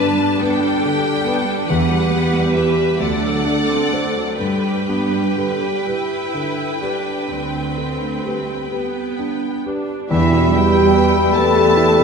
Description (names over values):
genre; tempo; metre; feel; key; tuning
classical, romantic movement for piano and orchestra; 41-49 BPM (dotted quarters); 12/8; rubato; G major; A4 = 440 Hz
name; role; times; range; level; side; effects
rich symphonic violin section; melody; 0.0-12.0 s; G4 to A5; -27 LUFS; left 4 dB; none
warm concert grand piano; melody; 0.0-12.0 s; D2 to C5; -20 LUFS; equal; none
bright symphonic violin section; second line; 0.0-12.0 s; G4 to A5; -25 LUFS; left 1 dB; none
rich symphonic viola section; accompaniment; 0.0-10.1 s; D3 to A4; -23 LUFS; right 2 dB; none
rich symphonic cello section; bass; 0.0-12.0 s; D2 to A3; -23 LUFS; right 6 dB; none
clear oboe; second line; 10.1-12.0 s; E5; -26 LUFS; equal; none
mellow hollow concert flute; second line; 10.1-12.0 s; B5; -21 LUFS; left 3 dB; none
warm clarinet; second line; 10.1-12.0 s; B4; -27 LUFS; left 5 dB; none
mellow bassoon; accompaniment; 10.1-12.0 s; G3; -24 LUFS; right 6 dB; none
dark French horn section; sustained chords; 10.1-12.0 s; E4 to A4; -17 LUFS; left 2 dB; none
rich symphonic double bass section; bass; 10.1-12.0 s; E2; -22 LUFS; right 4 dB; none
room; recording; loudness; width
wet concert hall reverb, RT60 2.0 s; minimal, uncompressed stereo recording; -16 LUFS; side -5 dB against mid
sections
0.0-10.1 A section; 10.1-12.0 B section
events
none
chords
0.0 G; 1.7 Em; 3.0 D7; 4.4 G; 10.1 Em